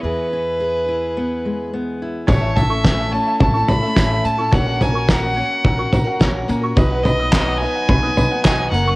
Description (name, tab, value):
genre	indie folk with a building arrangement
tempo	107 BPM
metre	4/4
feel	straight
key	B major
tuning	A4 = 443 Hz
part	rich fiddle	melody	0.0-9.0 s	B4 to B5	-22 LUFS	equal	cassette tape, tape echo
part	fingerpicked steel-string acoustic guitar	accompaniment	0.0-2.3 s	E3 to G#4	-24 LUFS	left 1 dB	none
part	upright bass	bass	0.0-8.9 s	F#1 to A#2	-24 LUFS	equal	none
part	picked steel-string acoustic guitar	accompaniment	2.3-9.0 s	A2 to B4	-24 LUFS	left 2 dB	none
part	bright upright piano	arpeggios	2.3-9.0 s	C#5 to D#6	-26 LUFS	right 2 dB	none
part	cloth-damped thuddy drum kit	drums	2.3-8.6 s	kick drum, snare drum, toms	-16 LUFS	equal	cassette tape
part	tambourine	percussion	2.3-8.9 s	none	-41 LUFS	right 4 dB	none
part	warm grand piano	accompaniment	6.8-9.0 s	F#1 to F#5	-28 LUFS	right 2 dB	none
part	group handclap	percussion	7.3-8.6 s	none	-25 LUFS	right 1 dB	none
room	studio reverb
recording	home recording on cassette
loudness	-15 LUFS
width	side -22 dB against mid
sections	0.0-2.3 A section; 2.3-9.0 B section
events	none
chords	0.0 E; 2.3 A; 4.5 F#/A#; 6.8 B